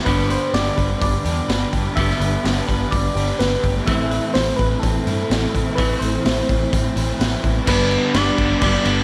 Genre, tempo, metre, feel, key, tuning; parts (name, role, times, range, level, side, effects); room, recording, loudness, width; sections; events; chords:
rock, shoegaze and dream pop; 126 BPM; 4/4; straight; G major; A4 = 440 Hz
direct-recorded clean electric guitar; arpeggios; 0.0-7.7 s; G3 to B4; -34 LUFS; equal; lush chorus, analog delay
crunchy overdriven guitar; riff; 0.0-9.0 s; G2 to E4; -29 LUFS; equal; subtle chorus
overdriven electric guitar; riff; 0.0-9.0 s; G2 to E4; -26 LUFS; equal; reverse reverb
soft struck synth lead; melody; 0.1-9.0 s; A4 to E5; -27 LUFS; equal; chorus, analog delay
vintage muted fingered electric bass; bass; 0.1-9.0 s; G1 to A2; -26 LUFS; equal
raw garage drum kit; drums; 0.1-9.0 s; crash cymbal, hi-hat, kick drum, snare drum; -25 LUFS; equal
string machine, full ensemble; sustained chords; 7.7-9.0 s; G4 to B5; -34 LUFS; equal
biting overdriven guitar; riff; 7.7-9.0 s; G2 to D4; -28 LUFS; equal; spring reverb
light reverb, small room ambience; -19 LUFS; mono
0.0-7.7 A section; 7.7-9.0 B section
0.1 G; 3.9 Amadd9; 7.7 G